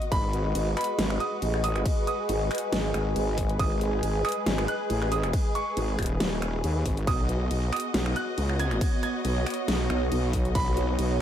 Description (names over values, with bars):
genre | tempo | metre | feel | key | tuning
heavy wobble dubstep | 138 BPM | 4/4 | swing 54% on 16ths, half-time | G# minor | A4 = 440 Hz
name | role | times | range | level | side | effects
rich symphonic string section | sustained chords | 0.0-11.2 s | G#3 to D#5 | -35 LUFS | left 3 dB | sidechain pumping
dubstep drum kit | drums | 0.0-11.1 s | crash cymbal, finger snaps, hi-hat, snare drum | -33 LUFS | equal | none
airy breathy pad | texture | 0.0-11.2 s | B3 to G#5 | -32 LUFS | right 1 dB | chorus, sidechain pumping
clear baby grand piano | melody | 0.1-11.1 s | B5 to G#6 | -34 LUFS | right 4 dB | ping-pong delay
wobble bass | bass | 0.1-11.2 s | D#1 to D#2 | -27 LUFS | equal | chorus, overdrive
electronic kick drum | drums | 0.1-10.6 s | none | -28 LUFS | equal | none
room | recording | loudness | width
light reverb, digital ambience | none | -24 LUFS | side -10 dB against mid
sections
0.0-11.2 A section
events
none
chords
0.1 G#m7; 7.1 B